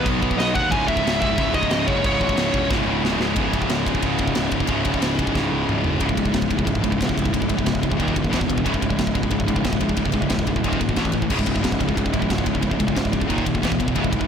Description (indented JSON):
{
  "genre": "heavy metal",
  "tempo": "181 BPM",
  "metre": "4/4",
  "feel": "straight",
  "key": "C# minor",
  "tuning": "A4 = 440 Hz",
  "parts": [
    { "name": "high-gain lead guitar", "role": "melody", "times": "0.0-2.7 s", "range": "C#5 to G#5", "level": "-23 LUFS", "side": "equal", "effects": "distortion, digital delay" },
    { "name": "fuzz guitar", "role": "riff", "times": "0.0-14.3 s", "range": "C#2 to B4", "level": "-26 LUFS", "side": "equal", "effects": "distortion" },
    { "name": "high-gain distorted guitar", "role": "riff", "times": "0.0-14.3 s", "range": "C#2 to B3", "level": "-27 LUFS", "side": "right 11 dB", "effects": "distortion" },
    { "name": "tight distorted guitar", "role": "riff", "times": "0.0-14.3 s", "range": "C#2 to B3", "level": "-26 LUFS", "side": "left 12 dB", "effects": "distortion" },
    { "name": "fuzz picked electric bass", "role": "bass", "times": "0.0-14.3 s", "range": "C#1 to D#2", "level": "-26 LUFS", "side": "equal", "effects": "overdrive" },
    { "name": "tight metal drum kit", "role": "drums", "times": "0.1-14.3 s", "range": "china cymbal, crash cymbal, kick drum, ride cymbal, snare drum, toms", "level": "-25 LUFS", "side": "equal", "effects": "none" }
  ],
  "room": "studio ambience",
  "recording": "blown-out, overdriven recording, overdrive",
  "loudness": "-19 LUFS",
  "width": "side -7 dB against mid",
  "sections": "0.0-3.4 A section; 3.4-6.0 B section; 6.0-14.3 C section",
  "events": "drum fill 2.7-3.4, 5.3-6.0",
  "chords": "0.0 B; 0.7 C#m; 8.0 D#5; 8.3 E5; 8.7 C#m; 10.6 D#5; 11.0 A5; 11.3 C#m; 13.3 D#5; 13.6 E5"
}